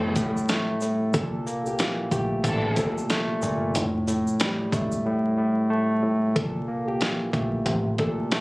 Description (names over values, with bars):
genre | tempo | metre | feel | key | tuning
hip hop, boom-bap hip-hop | 92 BPM | 4/4 | swing 61% on 16ths | unclear | A4 = 440 Hz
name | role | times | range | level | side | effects
barky tine electric piano | accompaniment | 0.0-8.4 s | A2 to Bb3 | -25 LUFS | equal | overdrive, medium stereo tremolo, high-pass filter, low-pass filter
dark symphonic string section | stabs | 0.0-2.9 s | E3 to A4 | -30 LUFS | equal | high-pass filter, low-pass filter, slapback echo
deep dub fingered electric bass | bass | 0.0-7.9 s | E1 to C2 | -29 LUFS | equal | none
boom bap sampler-style drum kit | drums | 0.2-8.4 s | hi-hat, kick drum, shaker, snare drum | -26 LUFS | equal | none
egg shaker | percussion | 0.2-5.0 s | none | -42 LUFS | equal | none
flamenco guitar | melody | 1.1-8.3 s | G4 to A4 | -31 LUFS | equal | high-pass filter, low-pass filter, slapback echo
room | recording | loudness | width
light reverb | recorded on a phone in the room, club reverb, vinyl crackle, compression | -22 LUFS | side -23 dB against mid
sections
0.0-6.4 A section; 6.4-8.4 B section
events
drums muted 5.1-6.4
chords
0.0 Fmaj9 (rootless); 1.1 C13; 3.8 Fadd9; 6.4 C6